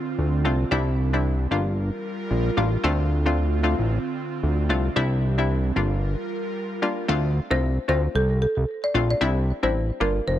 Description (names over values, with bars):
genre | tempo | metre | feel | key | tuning
afrobeats | 113 BPM | 4/4 | swing 58% on 16ths | D minor | A4 = 438 Hz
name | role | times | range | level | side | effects
airy breathy pad | sustained chords | 0.0-7.1 s | D3 to Bb4 | -30 LUFS | right 2 dB | chorus
fat analog bass | bass | 0.2-10.4 s | F1 to D2 | -22 LUFS | equal | none
hollow square pluck | accompaniment | 0.4-10.2 s | G3 to F4 | -26 LUFS | left 3 dB | chorus
folk marimba with medium mallets | melody | 7.5-10.4 s | A4 to D5 | -26 LUFS | equal | tape echo
room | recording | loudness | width
digital ambience | none | -21 LUFS | side -12 dB against mid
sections
0.0-7.1 A section; 7.1-10.4 B section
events
none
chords
0.0 Dm7; 0.7 Cadd9; 1.5 Gm7; 2.8 Dm7; 5.0 Cadd9; 5.8 Gm7; 7.1 Dm7; 9.2 Cadd9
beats
0.18 | 0.71 1.25 1.78 2.31 | 2.84 3.37 3.90 4.43 | 4.96 5.49 6.03 6.56 | 7.09 7.62 8.15 8.68 | 9.21 9.74 10.27